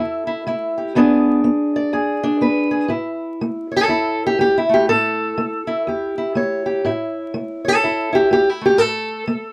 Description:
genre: acoustic country blues, solo or duo.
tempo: 122 BPM.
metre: 4/4.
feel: swing 60% on 8ths.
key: A mixolydian.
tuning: A4 = 440 Hz.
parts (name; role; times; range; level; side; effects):
fingerpicked steel-string acoustic guitar; solo; 0.0-9.5 s; E2 to D5; -19 LUFS; equal; none.
room: moderate booth ambience, RT60 0.2 s.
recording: vinyl crackle.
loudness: -19 LUFS.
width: mono.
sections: 0.0-2.9 A section; 2.9-9.5 B section.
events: steel-string acoustic guitar solo 2.9-9.5.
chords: 0.0 A5; 1.0 E7; 2.9 A7.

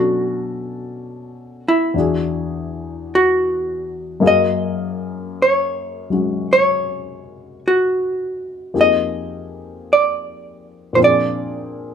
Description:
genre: jazz.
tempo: 53 BPM.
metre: 4/4.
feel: swing 68% on 8ths.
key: unclear.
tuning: A4 = 440 Hz.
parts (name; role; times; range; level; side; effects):
vintage hollow-body jazz guitar; melody; 0.0-11.9 s; Fb4 to Eb5; -16 LUFS; right 1 dB; none.
dark baby grand piano; accompaniment; 0.0-11.9 s; E2 to F5; -22 LUFS; left 4 dB; none.
room: light reverb.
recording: none.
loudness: -16 LUFS.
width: side -7 dB against mid.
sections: 0.0-11.9 A section.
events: none.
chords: 0.0 Bm7; 1.9 E9; 4.2 Gbmaj9; 8.7 Fm11; 11.0 Bb7.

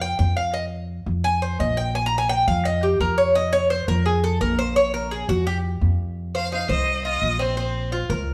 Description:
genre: latin, Cuban son and guajira.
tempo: 171 BPM.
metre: 4/4.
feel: straight.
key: unclear.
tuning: A4 = 440 Hz.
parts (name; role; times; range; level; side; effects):
Cuban tres; arpeggios; 0.0-8.3 s; C4 to Bb5; -24 LUFS; equal; none.
upright bass; bass; 0.0-8.3 s; Bb1 to F2; -26 LUFS; equal; none.
clear violin; melody; 6.4-7.9 s; C5 to F5; -27 LUFS; equal; none.
room: wet large studio reverb, RT60 1.1 s.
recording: band playing live in one room.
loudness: -22 LUFS.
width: mono.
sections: 0.0-6.2 A section; 6.2-8.3 B section.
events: Cuban tres solo 0.0-6.2.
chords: 0.0 Bb5; 6.2 F5; 7.6 Bbmadd9.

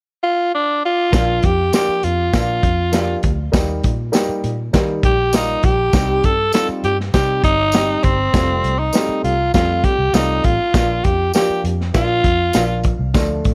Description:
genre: uptempo 1960s-style soul.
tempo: 100 BPM.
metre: 4/4.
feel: straight.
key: Bb major.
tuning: A4 = 440 Hz.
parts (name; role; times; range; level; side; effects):
raspy alto saxophone; melody; 0.2-12.8 s; C4 to A4; -20 LUFS; equal; none.
dark upright piano; accompaniment; 1.1-13.5 s; F3 to G4; -26 LUFS; equal; none.
vintage muted fingered electric bass; bass; 1.1-13.5 s; F1 to Eb3; -24 LUFS; equal; none.
crunchy breakbeat drum kit; drums; 1.1-13.5 s; hi-hat, kick drum, snare drum; -20 LUFS; equal; none.
tambourine; percussion; 1.1-13.3 s; none; -34 LUFS; equal; none.
room: small room ambience.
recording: none.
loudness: -17 LUFS.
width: mono.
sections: 0.0-1.1 A section; 1.1-13.5 B section.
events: none.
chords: 0.0 N.C.; 1.1 Bb; 3.5 Eb; 5.9 Cm; 8.3 Fadd9; 10.7 Bb.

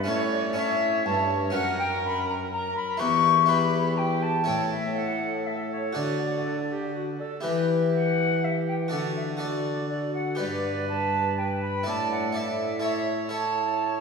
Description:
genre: classical, renaissance-style consort dance.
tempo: 123 BPM.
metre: 3/4.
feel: straight.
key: unclear.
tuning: A4 = 440 Hz.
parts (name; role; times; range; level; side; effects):
silver concert flute; melody; 0.0-14.0 s; B4 to C#6; -27 LUFS; left 2 dB; none.
warm viola; second line; 0.0-14.0 s; F#4 to D5; -33 LUFS; right 2 dB; none.
harpsichord; accompaniment; 0.0-14.0 s; E2 to D5; -29 LUFS; left 2 dB; none.
warm trombone; bass; 0.0-14.0 s; E2 to E3; -32 LUFS; right 2 dB; none.
room: wet concert hall reverb, RT60 2.4 s.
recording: recorded in a church or concert hall, studio ambience.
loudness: -24 LUFS.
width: side -5 dB against mid.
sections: 0.0-7.4 A section; 7.4-14.0 B section.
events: none.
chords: 0.1 A; 1.5 F#; 3.0 Em; 4.5 A; 6.0 D; 7.4 Em; 8.9 D; 10.4 G; 11.9 Asus4; 12.8 A.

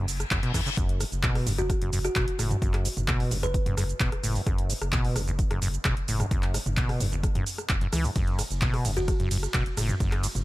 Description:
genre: acid house.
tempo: 130 BPM.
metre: 4/4.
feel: straight.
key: F# minor pentatonic.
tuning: A4 = 441 Hz.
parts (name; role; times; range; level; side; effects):
deep acid bass; riff; 0.0-10.3 s; E2 to E3; -30 LUFS; equal; overdrive.
round analog bass; bass; 0.0-10.4 s; E1 to F#2; -32 LUFS; equal; sidechain pumping.
reverse cymbal; sound effects; 0.1-0.8 s; none; -36 LUFS; left 6 dB; none.
punchy analog drum machine; drums; 0.1-10.4 s; handclaps, hi-hat, ride cymbal, rim click, shaker, toms; -31 LUFS; right 1 dB; overdrive.
electronic kick drum; drums; 0.3-10.1 s; none; -28 LUFS; equal; overdrive.
kalimba; melody; 1.6-3.8, 9.0-9.1 s; F#4 to B4; -34 LUFS; equal; dub echo.
room: little or no reverb.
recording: none.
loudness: -24 LUFS.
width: side -17 dB against mid.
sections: 0.0-10.4 A section.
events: reverse cymbal 0.1-0.8.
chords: none.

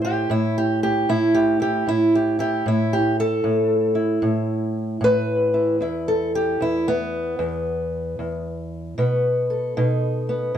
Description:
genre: acoustic country blues, solo or duo.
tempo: 76 BPM.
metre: 4/4.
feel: swing 64% on 8ths.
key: unclear.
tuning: A4 = 440 Hz.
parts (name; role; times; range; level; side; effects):
fingerpicked old ladder-braced acoustic guitar; solo; 0.0-10.6 s; E2 to C5; -19 LUFS; equal; none.
room: light reverb.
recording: close, detailed microphones.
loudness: -19 LUFS.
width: side -9 dB against mid.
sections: 0.0-10.6 A section.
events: steel-string acoustic guitar solo 0.0-10.6.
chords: 0.0 Asus2; 5.8 N.C.; 9.0 B7.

